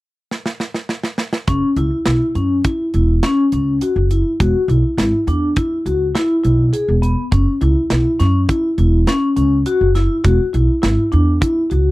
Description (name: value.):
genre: progressive instrumental, band music in an uneven meter.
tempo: 103 BPM.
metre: 5/4.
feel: straight.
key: unclear.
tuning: A4 = 441 Hz.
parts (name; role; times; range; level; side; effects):
tight metal drum kit; drums; 0.3-11.8 s; hi-hat, kick drum, snare drum; -20 LUFS; right 1 dB; none.
vibraphone with soft mallets; arpeggios; 1.5-11.9 s; B3 to G#4; -17 LUFS; left 2 dB; none.
upright bass; bass; 1.5-11.9 s; E1 to F#2; -16 LUFS; equal; none.
room: little or no reverb.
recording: dry, close 1970s-style studio recording.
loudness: -14 LUFS.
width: side -19 dB against mid.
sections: 0.0-1.5 A section; 1.5-11.9 B section.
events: drum fill 0.3-1.5.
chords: 0.0 N.C.; 1.5 F#5; 4.4 Esus2; 7.3 F#5; 10.2 Esus2.